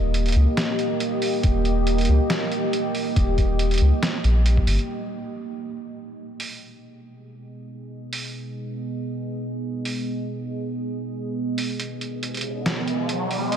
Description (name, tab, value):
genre	deep dubstep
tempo	139 BPM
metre	4/4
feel	swing 54% on 16ths, half-time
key	G# harmonic minor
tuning	A4 = 440 Hz
part	deep dark ambient pad	sustained chords	0.0-13.6 s	A#3 to D#5	-26 LUFS	right 1 dB	chorus, built-in reverb
part	soft dub sub bass	bass	0.0-4.8, 11.8-13.6 s	D#1 to C#2	-19 LUFS	equal	tube saturation, high-pass filter
part	trip hop sampler-style drum kit	drums	0.1-13.6 s	hi-hat, snare drum	-29 LUFS	right 1 dB	none
part	electronic kick drum	drums	1.4-4.7 s	none	-22 LUFS	equal	none
part	riser	sound effects	12.3-13.6 s	none	-29 LUFS	equal	none
room	moderate cathedral reverb, RT60 4.8 s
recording	dreamy mix soaked in reverb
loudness	-22 LUFS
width	side -9 dB against mid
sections	0.0-4.9 A section; 4.9-11.8 B section; 11.8-13.6 C section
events	filter sweep on ambient pad 4.9-11.8; build-up 11.8-13.6; riser 12.3-13.6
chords	0.0 D#; 4.9 G#m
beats	0.14 0.57 1.00 | 1.44 1.87 2.30 2.73 | 3.16 3.60 4.03 4.46 | 4.89 5.32 5.75 6.18 | 6.62 7.05 7.48 7.91 | 8.34 8.78 9.21 9.64 | 10.07 10.50 10.93 11.37 | 11.80 12.23 12.66 13.09 | 13.52